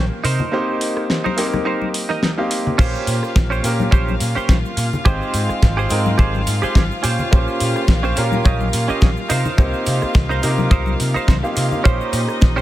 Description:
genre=nu-disco, nu disco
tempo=106 BPM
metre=4/4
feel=swing 55% on 16ths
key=Bb dorian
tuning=A4 = 440 Hz
part: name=clear baby grand piano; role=accompaniment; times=0.0-12.6 s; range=Ab3 to G5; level=-23 LUFS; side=equal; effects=sidechain pumping, dub echo
part: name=direct-recorded clean electric guitar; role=riff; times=0.0-12.6 s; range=Db4 to Eb5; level=-25 LUFS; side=right 4 dB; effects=analog chorus, dub echo
part: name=overdriven picked electric bass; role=bass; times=0.0-12.6 s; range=Ab1 to C3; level=-21 LUFS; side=equal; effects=sidechain pumping
part: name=pop drum kit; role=drums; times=0.2-12.5 s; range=crash cymbal, hi-hat, rim click, snare drum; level=-25 LUFS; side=equal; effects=none
part: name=congas and cabasa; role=percussion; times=0.4-12.6 s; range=none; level=-27 LUFS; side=left 4 dB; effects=none
part: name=bright chamber string section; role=sustained chords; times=2.8-12.6 s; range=Eb4 to F5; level=-27 LUFS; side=left 1 dB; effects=sidechain pumping
part: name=kick drum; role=drums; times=2.8-12.5 s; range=none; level=-14 LUFS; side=equal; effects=none
room=light reverb, small room ambience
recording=none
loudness=-15 LUFS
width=side -14 dB against mid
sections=0.0-12.6 A section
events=none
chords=0.2 Cm7; 2.8 Bbm69; 5.1 Abmaj7; 7.0 Bbm69; 9.3 Cm7; 11.9 Bbm69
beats=| 0.53 1.10 1.66 2.23 | 2.79 3.36 3.93 4.49 | 5.06 5.62 6.19 6.76 | 7.32 7.89 8.46 9.02 | 9.59 10.15 10.72 11.29 | 11.85 12.42

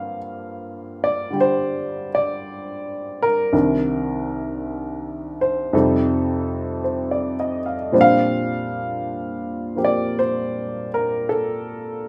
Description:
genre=jazz ballad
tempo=54 BPM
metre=4/4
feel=swing 68% on 8ths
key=Bb major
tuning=A4 = 440 Hz
part: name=warm upright piano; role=solo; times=0.0-12.1 s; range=C2 to F5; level=-22 LUFS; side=equal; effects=none
room=light reverb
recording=none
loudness=-22 LUFS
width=mono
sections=0.0-12.1 A section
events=none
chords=0.0 Gm7; 3.5 Cm7; 5.7 F7; 7.9 Bbmaj13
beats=0.20 1.31 2.43 | 3.54 4.63 5.73 6.83 | 7.93 9.03 10.13 11.23

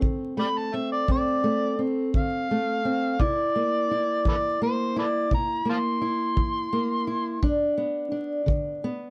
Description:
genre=acoustic country blues, solo or duo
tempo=57 BPM (dotted quarters)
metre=12/8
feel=straight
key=unclear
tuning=A4 = 441 Hz
part: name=fingerpicked old ladder-braced acoustic guitar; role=accompaniment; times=0.0-9.1 s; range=D2 to E4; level=-29 LUFS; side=equal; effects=none
part: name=kick drum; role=drums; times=0.0-8.6 s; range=none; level=-27 LUFS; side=equal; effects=none
part: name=overdriven harmonica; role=melody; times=0.4-7.4 s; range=A4 to C6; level=-28 LUFS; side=equal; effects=none
room=light reverb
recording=dark, warm production, vinyl crackle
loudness=-26 LUFS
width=mono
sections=0.0-9.1 A section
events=none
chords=0.0 D5; 3.2 C7; 7.4 G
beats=0.03 1.08 2.14 | 3.20 4.26 5.32 6.37 | 7.43 8.48

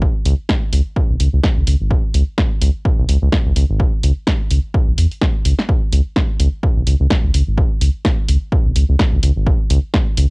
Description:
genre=minimal techno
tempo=127 BPM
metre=4/4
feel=swing 57% on 16ths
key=C# minor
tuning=A4 = 440 Hz
part: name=round analog bass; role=bass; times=0.0-10.3 s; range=G#1 to E2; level=-14 LUFS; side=equal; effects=sidechain pumping
part: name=electronic kick drum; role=drums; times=0.0-10.0 s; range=none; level=-17 LUFS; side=equal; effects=small room ambience, cassette tape
part: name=punchy analog drum machine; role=drums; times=0.3-10.3 s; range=hi-hat, snare drum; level=-20 LUFS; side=equal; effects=small room ambience, cassette tape
room=little or no reverb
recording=home recording on cassette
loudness=-14 LUFS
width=side -33 dB against mid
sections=0.0-10.3 A section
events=none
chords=none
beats=| 0.02 0.49 0.96 1.44 | 1.91 2.38 2.85 3.33 | 3.80 4.27 4.74 5.21 | 5.69 6.16 6.63 7.10 | 7.58 8.05 8.52 8.99 | 9.47 9.94

